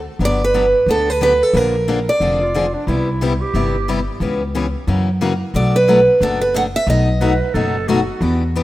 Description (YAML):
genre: acoustic string swing (jazz manouche)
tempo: 180 BPM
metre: 4/4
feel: swing 60% on 8ths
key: unclear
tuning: A4 = 442 Hz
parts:
  - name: upright bass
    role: bass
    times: 0.0-8.6 s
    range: F1 to F#2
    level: -19 LUFS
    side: equal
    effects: none
  - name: picked steel-string acoustic guitar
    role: melody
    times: 0.2-2.7, 5.6-7.4 s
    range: A4 to F#5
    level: -15 LUFS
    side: right 2 dB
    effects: none
  - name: picked steel-string acoustic guitar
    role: accompaniment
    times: 0.2-8.6 s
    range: B2 to Ab4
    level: -21 LUFS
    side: left 4 dB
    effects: none
  - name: growling clarinet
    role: second line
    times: 2.4-4.1, 7.2-8.5 s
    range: D4 to B4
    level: -24 LUFS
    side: right 4 dB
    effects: none
room: light reverb, small room ambience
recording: rough home demo mix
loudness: -14 LUFS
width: side -16 dB against mid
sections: 0.2-8.6 A section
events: none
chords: 0.2 Gmaj7; 1.5 Bb7; 2.9 Cmaj7; 4.2 C#m7b5; 4.9 F#7; 5.5 Bm7; 6.9 B7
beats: | 0.21 0.54 0.88 1.21 | 1.54 1.88 2.21 2.54 | 2.88 3.21 3.54 3.88 | 4.21 4.54 4.88 5.21 | 5.54 5.88 6.21 6.54 | 6.88 7.21 7.55 7.88 | 8.21 8.55